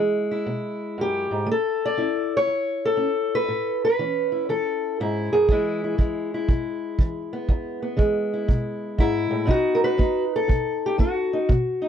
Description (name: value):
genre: acoustic country blues, solo or duo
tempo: 120 BPM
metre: 4/4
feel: swing 68% on 8ths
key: E major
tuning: A4 = 442 Hz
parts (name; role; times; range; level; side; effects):
- fingerpicked steel-string acoustic guitar; melody; 0.0-11.9 s; E2 to D5; -22 LUFS; left 1 dB; none
- kick drum; drums; 5.5-11.7 s; none; -20 LUFS; right 1 dB; none
room: little or no reverb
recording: dry, close 1970s-style studio recording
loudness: -21 LUFS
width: side -9 dB against mid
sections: 0.0-11.9 A section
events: none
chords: 0.0 E; 1.5 A; 5.5 E; 9.5 B